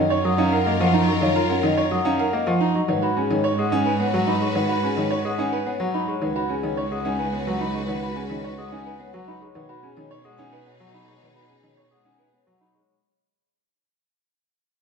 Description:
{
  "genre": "classical, minimalist pattern music",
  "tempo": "108 BPM",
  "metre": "3/4",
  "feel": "straight",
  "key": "unclear",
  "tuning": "A4 = 439 Hz",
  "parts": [
    { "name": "vibraphone with soft mallets", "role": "melody", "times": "0.0-12.9 s", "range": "G#4 to A#5", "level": "-28 LUFS", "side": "left 10 dB", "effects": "none" },
    { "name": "warm baby grand piano", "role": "accompaniment", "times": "0.0-12.9 s", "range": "D#3 to C#4", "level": "-26 LUFS", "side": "right 1 dB", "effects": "none" },
    { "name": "rich symphonic violin section", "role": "sustained chords", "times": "0.0-12.7 s", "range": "D#4 to B4", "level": "-32 LUFS", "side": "left 4 dB", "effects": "none" },
    { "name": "dark baby grand piano", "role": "arpeggios", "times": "0.0-12.8 s", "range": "C#4 to C#5", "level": "-28 LUFS", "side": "right 10 dB", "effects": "none" },
    { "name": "large celesta", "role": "arpeggios", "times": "0.0-12.9 s", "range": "D#5 to D#6", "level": "-30 LUFS", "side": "left 4 dB", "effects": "none" },
    { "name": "warm cello", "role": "bass", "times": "0.0-12.7 s", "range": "C#2 to B2", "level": "-28 LUFS", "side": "right 4 dB", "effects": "none" }
  ],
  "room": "moderate scoring stage reverb, RT60 1.7 s",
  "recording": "none",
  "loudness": "-20 LUFS",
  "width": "side -6 dB against mid",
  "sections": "0.0-12.9 A section",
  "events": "fade-out 0.0-12.9",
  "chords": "0.0 F#maj7; 2.9 G#m7; 6.2 C#7sus4; 9.6 B6"
}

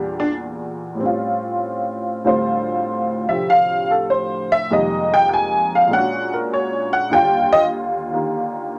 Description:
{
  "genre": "solo jazz",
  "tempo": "98 BPM",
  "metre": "4/4",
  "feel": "swing 68% on 8ths, rubato",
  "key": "unclear",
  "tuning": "A4 = 442 Hz",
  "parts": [
    { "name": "honky-tonk upright piano", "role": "solo", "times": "0.0-8.8 s", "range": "D2 to Ab5", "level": "-19 LUFS", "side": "equal", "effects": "none" }
  ],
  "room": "moderate studio ambience, RT60 0.5 s",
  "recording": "none",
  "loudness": "-19 LUFS",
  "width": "mono",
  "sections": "0.0-8.8 A section",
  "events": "honky-tonk piano solo 0.0-8.8",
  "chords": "0.0 Em7b5; 1.0 A7alt; 2.3 Dm7; 4.7 Fm11; 5.9 Bb7alt; 7.1 Ebmaj9"
}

